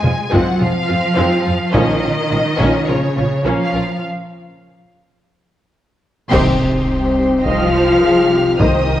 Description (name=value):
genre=cinematic, epic orchestral film score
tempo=105 BPM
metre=4/4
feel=straight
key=Bb minor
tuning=A4 = 440 Hz
part: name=rich symphonic violin section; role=melody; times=0.0-9.0 s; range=Db5 to F6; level=-23 LUFS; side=left 1 dB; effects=none
part: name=warm symphonic violin section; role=second line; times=0.0-9.0 s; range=Ab3 to F5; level=-25 LUFS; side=left 3 dB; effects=none
part: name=dark symphonic viola section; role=accompaniment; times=0.0-3.8, 7.4-9.0 s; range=F3 to Eb5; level=-21 LUFS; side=equal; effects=none
part: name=warm symphonic cello section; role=bass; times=0.0-9.0 s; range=C3 to Ab3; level=-19 LUFS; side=right 2 dB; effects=none
part: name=warm symphonic double bass section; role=bass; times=0.0-9.0 s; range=Bb1 to F2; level=-23 LUFS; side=right 1 dB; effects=none
part: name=taiko ensemble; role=drums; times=0.0-9.0 s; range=none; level=-20 LUFS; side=equal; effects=none
part: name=mellow French horn section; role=sustained chords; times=0.6-9.0 s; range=F3 to F4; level=-19 LUFS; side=left 3 dB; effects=none
part: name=timpani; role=percussion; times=1.7-2.6 s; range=Bb2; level=-24 LUFS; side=equal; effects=none
part: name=warm symphonic string section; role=sustained chords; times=6.3-9.0 s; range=C4 to G5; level=-23 LUFS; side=left 1 dB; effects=none
part: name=clash cymbals and concert bass drum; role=percussion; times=6.3-7.4 s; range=none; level=-24 LUFS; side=equal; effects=none
part: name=impact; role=sound effects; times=6.3-8.6 s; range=none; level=barely audible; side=none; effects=none
room=moderate scoring stage reverb, RT60 1.6 s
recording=worn, warbling old tape, cassette tape, warbly pitch drift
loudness=-13 LUFS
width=side -12 dB against mid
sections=0.0-6.3 A section; 6.3-9.0 B section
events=break 4.0-6.3; drum fill 5.5-6.3; band accent 6.3-6.9; impact 6.3-8.6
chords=0.0 Fm; 1.7 Bbm; 4.0 N.C.; 6.3 Cm